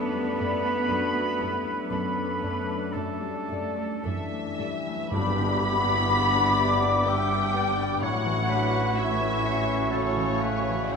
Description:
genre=cinematic, emotional film score for orchestra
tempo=54-64 BPM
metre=3/4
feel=rubato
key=G lydian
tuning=A4 = 439 Hz
part: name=hollow concert flute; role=second line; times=0.0-11.0 s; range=A5 to D6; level=-32 LUFS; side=equal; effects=none
part: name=mellow oboe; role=second line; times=0.0-11.0 s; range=A4 to E5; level=-34 LUFS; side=right 3 dB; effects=none
part: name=muted symphonic viola section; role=accompaniment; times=0.0-10.9 s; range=B3 to G4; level=-35 LUFS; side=right 3 dB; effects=none
part: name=warm concert grand piano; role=accompaniment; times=0.0-11.0 s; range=F#2 to A4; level=-33 LUFS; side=left 1 dB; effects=none
part: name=mellow French horn section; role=sustained chords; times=0.0-10.9 s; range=C#3 to A4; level=-33 LUFS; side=left 4 dB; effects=none
part: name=concert harp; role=arpeggios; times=0.0-11.0 s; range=F#2 to A5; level=-35 LUFS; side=left 7 dB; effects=none
part: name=muted symphonic cello section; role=bass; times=0.0-10.9 s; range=G2 to B3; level=-33 LUFS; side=right 2 dB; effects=none
part: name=muted studio violin section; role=melody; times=0.4-11.0 s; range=C#5 to B5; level=-30 LUFS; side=left 4 dB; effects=none
part: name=muted studio violin section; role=second line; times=0.4-11.0 s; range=A4 to B5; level=-33 LUFS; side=equal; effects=none
part: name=muted symphonic double bass section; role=bass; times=0.4-10.9 s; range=G1 to F#2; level=-35 LUFS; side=right 3 dB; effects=none
part: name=mellow clarinet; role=second line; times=5.1-11.0 s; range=E4 to G4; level=-35 LUFS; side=equal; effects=none
part: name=tam-tam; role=percussion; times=5.1-8.9 s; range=none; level=-38 LUFS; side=left 1 dB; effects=none
part: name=timpani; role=percussion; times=5.1-6.5 s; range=G2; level=-33 LUFS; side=equal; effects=none
room=wet scoring stage reverb, RT60 1.5 s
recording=minimal, uncompressed stereo recording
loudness=-23 LUFS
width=side -5 dB against mid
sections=0.0-5.1 A section; 5.1-11.0 B section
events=band accent 5.1-6.1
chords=0.0 D/F#; 5.1 G; 8.0 A

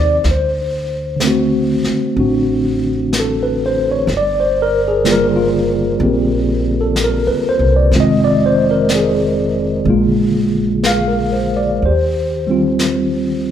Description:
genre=jazz ballad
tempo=62 BPM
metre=4/4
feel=swing 67% on 8ths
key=Eb major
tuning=A4 = 442 Hz
part: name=mellow tine electric piano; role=accompaniment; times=0.0-13.5 s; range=C3 to F5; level=-14 LUFS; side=equal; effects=medium stereo tremolo
part: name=upright bass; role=bass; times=0.0-13.5 s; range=F1 to Eb2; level=-20 LUFS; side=equal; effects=none
part: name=vintage brush drum kit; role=drums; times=0.2-13.5 s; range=brushed snare drum, hi-hat, snare drum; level=-24 LUFS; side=left 2 dB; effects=none
room=moderate recital hall reverb, RT60 1.6 s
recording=recorded in a church or concert hall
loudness=-13 LUFS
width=side -9 dB against mid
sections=0.0-11.8 A section; 11.8-13.5 B section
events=none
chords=0.2 D7; 4.1 Gm7; 7.9 Fm7; 9.9 Bb7; 11.8 Eb69

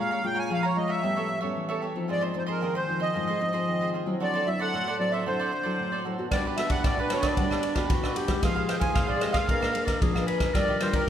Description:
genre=samba and choro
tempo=114 BPM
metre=4/4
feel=straight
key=unclear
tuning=A4 = 440 Hz
part: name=accordion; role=melody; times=0.0-11.1 s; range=Bb4 to Ab5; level=-29 LUFS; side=right 1 dB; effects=light tremolo tuning
part: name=cavaquinho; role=accompaniment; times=0.0-11.1 s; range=D4 to Bb5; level=-33 LUFS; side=right 4 dB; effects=none
part: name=nylon-string guitar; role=accompaniment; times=0.0-11.1 s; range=Ab2 to Cb5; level=-30 LUFS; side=left 2 dB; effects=none
part: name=warm clarinet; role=second line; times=6.3-11.1 s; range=D4 to Cb5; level=-31 LUFS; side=left 2 dB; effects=none
part: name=swinging big-band drum kit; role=drums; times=6.3-11.1 s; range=kick drum, ride cymbal, rim click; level=-27 LUFS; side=equal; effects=none
room=moderate concert hall reverb, RT60 2.2 s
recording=recorded in a church or concert hall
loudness=-24 LUFS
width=side -10 dB against mid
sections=0.0-11.1 A section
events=none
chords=0.0 Bbm7; 1.0 A9; 2.1 Ab6; 4.2 D9; 6.3 Gmaj9; 8.4 Fm9; 9.5 Bb7b9; 10.6 Ebmaj9

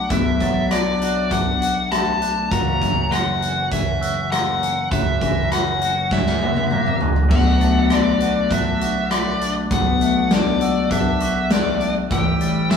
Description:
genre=post-rock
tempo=100 BPM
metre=4/4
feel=straight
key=B minor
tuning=A4 = 442 Hz
part: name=nasal lead guitar with a parked wah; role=melody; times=0.0-12.8 s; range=D5 to A#5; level=-23 LUFS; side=left 2 dB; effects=overdrive
part: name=pedal steel guitar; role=sustained chords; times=0.0-12.8 s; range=D3 to G4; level=-30 LUFS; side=left 1 dB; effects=none
part: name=glockenspiel with rubber mallets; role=arpeggios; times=0.0-12.8 s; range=D6 to A#6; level=-32 LUFS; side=right 4 dB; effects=none
part: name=twangy electric guitar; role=arpeggios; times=0.0-12.8 s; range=F#2 to F#4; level=-25 LUFS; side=left 4 dB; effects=phaser
part: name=growling fingered electric bass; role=bass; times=0.0-12.8 s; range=F#1 to B1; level=-25 LUFS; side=equal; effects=overdrive
part: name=big rock drum kit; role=drums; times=0.1-12.8 s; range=crash cymbal, hi-hat, kick drum, rim click, snare drum, toms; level=-21 LUFS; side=equal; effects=none
room=wet stone room reverb, RT60 1.0 s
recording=band playing live in one room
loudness=-17 LUFS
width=side -6 dB against mid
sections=0.0-7.3 A section; 7.3-12.8 B section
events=drum fill 6.1-7.3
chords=0.0 Bm7; 2.5 F#7; 7.3 Bm7; 12.1 A7(no3)

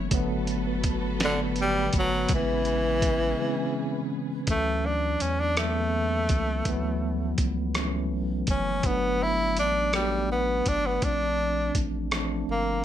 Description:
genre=slow six-eight R&B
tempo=55 BPM (dotted quarters)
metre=6/8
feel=straight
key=D major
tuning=A4 = 440 Hz
part: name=mellow tine electric piano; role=accompaniment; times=0.0-12.8 s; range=C#3 to F#4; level=-30 LUFS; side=equal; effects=fast stereo tremolo
part: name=dark studio string section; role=sustained chords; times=0.0-4.5 s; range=B3 to B4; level=-36 LUFS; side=left 2 dB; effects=none
part: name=round analog bass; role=bass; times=0.0-12.8 s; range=F#1 to E2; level=-31 LUFS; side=equal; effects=none
part: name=dusty soul sampler-style drum kit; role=drums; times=0.1-12.3 s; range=hi-hat, kick drum, rim click, snare drum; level=-28 LUFS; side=equal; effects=none
part: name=breathy tenor saxophone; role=melody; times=1.2-12.8 s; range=D3 to E4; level=-26 LUFS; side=equal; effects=slapback echo
room=light reverb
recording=none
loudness=-24 LUFS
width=side -11 dB against mid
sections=0.0-4.5 A section; 4.5-12.8 B section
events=break 3.4-4.5; tenor saxophone solo 4.5-12.8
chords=0.1 Gmaj9; 2.3 Amaj9; 4.5 Dmaj9; 8.8 Gmaj9; 11.0 Bbmaj9

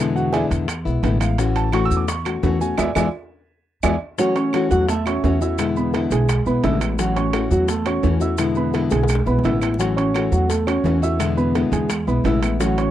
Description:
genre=latin, Cuban son and guajira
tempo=171 BPM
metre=4/4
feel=straight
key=A major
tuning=A4 = 440 Hz
part: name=nylon-string guitar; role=accompaniment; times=0.0-12.9 s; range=B2 to F#4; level=-22 LUFS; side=left 5 dB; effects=none
part: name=dark concert grand piano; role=arpeggios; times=0.0-12.9 s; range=F#3 to E6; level=-22 LUFS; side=right 4 dB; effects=none
part: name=upright bass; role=bass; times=0.0-12.9 s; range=A1 to E2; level=-22 LUFS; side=equal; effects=none
part: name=bongos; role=percussion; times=0.2-12.9 s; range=none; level=-32 LUFS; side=left 9 dB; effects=none
part: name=maracas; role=percussion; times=0.2-12.9 s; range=none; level=-37 LUFS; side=left 21 dB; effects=none
part: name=timbales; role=percussion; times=0.3-12.9 s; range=none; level=-29 LUFS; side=right 10 dB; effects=none
part: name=claves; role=percussion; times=0.7-12.6 s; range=none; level=-33 LUFS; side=right 11 dB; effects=none
part: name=flamenco guitar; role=second line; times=4.2-5.5 s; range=C#5 to F#5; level=-28 LUFS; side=right 6 dB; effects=none
room=little or no reverb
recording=dry, close 1970s-style studio recording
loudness=-17 LUFS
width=side -12 dB against mid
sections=0.0-4.2 A section; 4.2-12.9 B section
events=grand piano solo 0.0-4.2; band accent 2.8-4.2; drum fill 3.1-4.2, 8.9-9.8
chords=0.0 E7; 1.4 A6; 2.8 E7; 4.2 A6; 5.6 E7; 7.0 A6; 8.4 E7; 9.8 A6; 11.2 E7

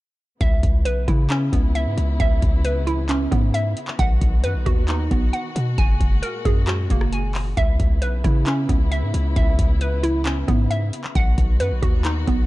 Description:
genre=hip hop, trap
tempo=134 BPM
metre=4/4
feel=half-time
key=C# dorian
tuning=A4 = 439 Hz
part: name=dark chamber string section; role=sustained chords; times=0.4-12.5 s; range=A#2 to F#4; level=-32 LUFS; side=left 2 dB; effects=none
part: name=hollow square pluck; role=arpeggios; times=0.4-12.5 s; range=A#3 to G#5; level=-25 LUFS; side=right 2 dB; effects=chorus, low-pass filter, digital delay
part: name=hard-hitting 808-style bass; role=bass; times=0.4-12.5 s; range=F#1 to C#3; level=-21 LUFS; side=equal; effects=none
part: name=booming analog drum machine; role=drums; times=0.4-12.5 s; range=handclaps, hi-hat, kick drum, rim click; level=-20 LUFS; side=equal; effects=none
room=digital ambience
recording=dark, warm production, nothing above 10.7 kHz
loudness=-18 LUFS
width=side -18 dB against mid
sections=0.4-12.5 A section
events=none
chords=0.4 C#m7; 4.0 B; 5.8 F#add9; 7.6 C#m7; 11.2 B

